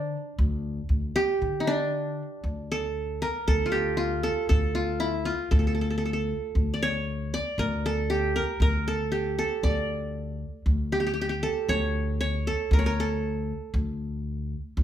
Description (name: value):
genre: Arabic maqam ensemble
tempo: 117 BPM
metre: 4/4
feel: straight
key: D maqam nahawand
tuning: A4 = 440 Hz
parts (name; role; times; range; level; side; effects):
- qanun; melody; 0.0-14.2 s; D4 to D5; -27 LUFS; right 1 dB; none
- upright bass; bass; 0.0-14.8 s; D2 to D3; -27 LUFS; equal; none
room: moderate large studio reverb, RT60 0.8 s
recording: band playing live in one room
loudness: -25 LUFS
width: side -10 dB against mid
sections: 0.0-2.4 A section; 2.4-14.8 B section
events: none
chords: none